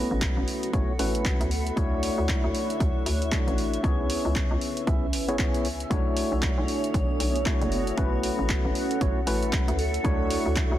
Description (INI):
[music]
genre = deep house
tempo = 116 BPM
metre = 4/4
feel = swing 60% on 16ths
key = unclear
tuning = A4 = 441 Hz
[part]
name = dark analog pad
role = sustained chords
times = 0.0-10.8 s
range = C#4 to F#5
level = -35 LUFS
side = right 1 dB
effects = chorus, phaser, sidechain pumping
[part]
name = percussive organ stab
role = stabs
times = 0.0-10.8 s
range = A3 to E5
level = -29 LUFS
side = left 1 dB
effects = chorus, sidechain pumping, analog delay
[part]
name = hollow knocking FM bass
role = bass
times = 0.0-10.8 s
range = F#1 to D2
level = -30 LUFS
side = equal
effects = sidechain pumping
[part]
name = granular cloud pad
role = texture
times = 0.0-10.8 s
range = B3 to B5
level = -34 LUFS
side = right 1 dB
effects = built-in reverb, sidechain pumping
[part]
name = electronic kick drum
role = drums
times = 0.2-10.7 s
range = none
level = -27 LUFS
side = equal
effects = none
[part]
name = punchy analog drum machine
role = drums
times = 0.2-10.7 s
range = handclaps, hi-hat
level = -33 LUFS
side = right 1 dB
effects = none
[sound]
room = digital ambience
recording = dense, heavily limited modern master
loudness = -23 LUFS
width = side -12 dB against mid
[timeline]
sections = 0.0-10.8 A section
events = none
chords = 0.0 A6; 3.8 C#m7; 5.9 Bm11; 8.0 A6